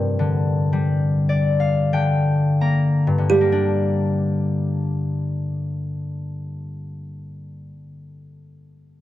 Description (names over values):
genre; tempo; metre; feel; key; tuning
celtic folk, Celtic slow air; 42-58 BPM; 3/4; rubato; G minor; A4 = 440 Hz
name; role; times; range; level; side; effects
kalimba; melody; 0.0-7.9 s; G4 to Bb4; -22 LUFS; right 5 dB; none
concert harp; accompaniment; 0.0-8.1 s; G2 to Bb5; -20 LUFS; left 2 dB; none
room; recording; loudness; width
light reverb; dry, close 1970s-style studio recording; -18 LUFS; side -14 dB against mid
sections
0.0-3.3 A section; 3.3-7.5 B section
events
slowing down 0.0-3.3; harp fill 0.7-3.3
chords
0.0 Gm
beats
0.71 1.92 | 3.29 4.67 6.04